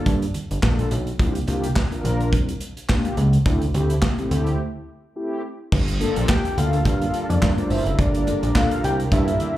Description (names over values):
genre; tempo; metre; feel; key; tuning
early-eighties boogie funk; 106 BPM; 4/4; swing 56% on 16ths; G dorian; A4 = 440 Hz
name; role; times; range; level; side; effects
mellow synth brass; accompaniment; 0.0-9.6 s; A3 to C5; -28 LUFS; left 1 dB; chorus, slapback echo
fat analog bass; bass; 0.1-9.3 s; F#1 to G2; -21 LUFS; equal; none
modern studio drum kit; drums; 0.1-9.5 s; crash cymbal, handclaps, hi-hat, kick drum, snare drum; -23 LUFS; equal; none
congas; percussion; 0.1-9.5 s; none; -33 LUFS; right 1 dB; none
lush unison pad; sustained chords; 6.1-9.6 s; G3 to Bb4; -31 LUFS; right 1 dB; chorus
fat analog lead; melody; 6.3-9.6 s; D5 to G5; -25 LUFS; equal; chorus, slapback echo
room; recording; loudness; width
little or no reverb; live gig heard through the venue's PA, club reverb; -19 LUFS; side -14 dB against mid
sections
0.0-5.7 A section; 5.7-9.6 B section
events
break 4.6-5.7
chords
0.0 Gm7; 1.2 C7sus4; 3.5 D7sus4; 5.7 Gm7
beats
0.06 0.63 | 1.20 1.76 2.33 2.89 | 3.46 4.03 4.59 5.16 | 5.72 6.29 6.86 7.42 | 7.99 8.55 9.12